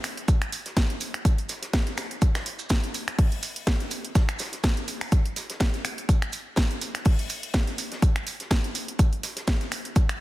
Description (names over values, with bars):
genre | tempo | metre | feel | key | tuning
house | 124 BPM | 4/4 | swing 55% on 16ths | none | none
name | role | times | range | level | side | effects
big rock drum kit | drums | 0.0-10.1 s | hi-hat, shaker, snare drum | -38 LUFS | right 1 dB | sidechain pumping on hats, high-pass filter on hats, high-pass filter on snare, sidechain pumping on perc, high-pass filter on perc, high-pass filter on room
house drum kit | drums | 0.0-10.2 s | finger snaps, hi-hat, snare drum | -30 LUFS | equal | soft clipping on snare
electronic kick drum | drums | 0.3-10.1 s | none | -22 LUFS | equal | none
room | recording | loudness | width
little or no reverb | dense, heavily limited modern master | -23 LUFS | side -17 dB against mid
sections
0.0-10.2 A section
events
none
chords
none